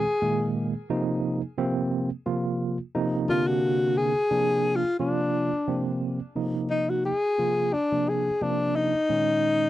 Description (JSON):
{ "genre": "jazz", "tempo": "88 BPM", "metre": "4/4", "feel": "swing 56% on 16ths", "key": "unclear", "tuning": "A4 = 440 Hz", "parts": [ { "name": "breathy alto saxophone", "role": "melody", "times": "0.0-9.7 s", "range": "D4 to Ab4", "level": "-24 LUFS", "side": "left 2 dB", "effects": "none" }, { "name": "tine electric piano", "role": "accompaniment", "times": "0.0-9.7 s", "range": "Bb2 to F4", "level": "-26 LUFS", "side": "right 2 dB", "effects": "fast stereo tremolo" } ], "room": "light reverb", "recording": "dry, close 1970s-style studio recording", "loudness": "-23 LUFS", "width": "side -14 dB against mid", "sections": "0.0-6.4 A section; 6.4-9.7 B section", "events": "alto saxophone solo 6.4-9.7", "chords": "0.0 Absus2; 0.9 F5; 3.3 Bb9; 6.4 Ab69; 7.7 Bbadd9; 9.1 Eb5/Bb", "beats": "0.21 | 0.89 1.57 2.26 2.94 | 3.62 4.31 4.99 5.67 | 6.36 7.04 7.73 8.41 | 9.09" }